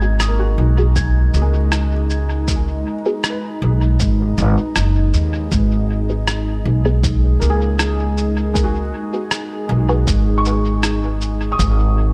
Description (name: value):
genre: ambient dub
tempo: 79 BPM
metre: 4/4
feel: straight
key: G# minor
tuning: A4 = 441 Hz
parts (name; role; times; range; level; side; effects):
- warbly tape-like pad; sustained chords; 0.0-12.1 s; G#3 to A#5; -28 LUFS; equal; chorus, built-in reverb
- felt-muted upright piano; arpeggios; 0.0-12.1 s; G#3 to G#6; -29 LUFS; equal; tape echo
- filtered dub chord stab; stabs; 0.0-10.0 s; B3 to G#4; -28 LUFS; equal; phaser, dub echo
- upright bass; bass; 0.0-12.1 s; F#1 to D#2; -18 LUFS; equal; none
- electronic rim click and cabasa; drums; 0.2-11.8 s; none; -26 LUFS; equal; studio reverb, dub echo
- electronic kick drum; drums; 1.0-11.8 s; none; -22 LUFS; equal; studio reverb
room: little or no reverb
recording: none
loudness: -18 LUFS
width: mono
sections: 0.0-12.1 A section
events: filter sweep on synth stab 0.0-12.1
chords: 0.0 G#m7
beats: 0.20 0.96 1.72 | 2.48 3.24 4.00 4.76 | 5.52 6.28 7.04 7.80 | 8.56 9.31 10.07 10.83 | 11.59